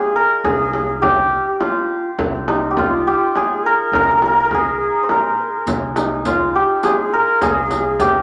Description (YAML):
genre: Persian modal ensemble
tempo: 103 BPM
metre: 3/4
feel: straight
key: C dastgah shur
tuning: A4 = 435 Hz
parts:
  - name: santur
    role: melody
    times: 0.0-8.2 s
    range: Eb4 to C5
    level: -18 LUFS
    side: equal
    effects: none
  - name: breathy bright low ney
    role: second line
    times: 0.0-8.2 s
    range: Eb4 to C5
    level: -26 LUFS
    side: equal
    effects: none
  - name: upright bass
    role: bass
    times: 0.4-8.2 s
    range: C2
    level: -33 LUFS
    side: equal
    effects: none
  - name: frame drum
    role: percussion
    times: 0.4-8.1 s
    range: none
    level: -25 LUFS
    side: equal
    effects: none
  - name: riq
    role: percussion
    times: 5.7-8.1 s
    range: none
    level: -31 LUFS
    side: equal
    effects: none
room: wet small room reverb, RT60 0.6 s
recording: none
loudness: -17 LUFS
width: mono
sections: 0.0-8.2 A section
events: none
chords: none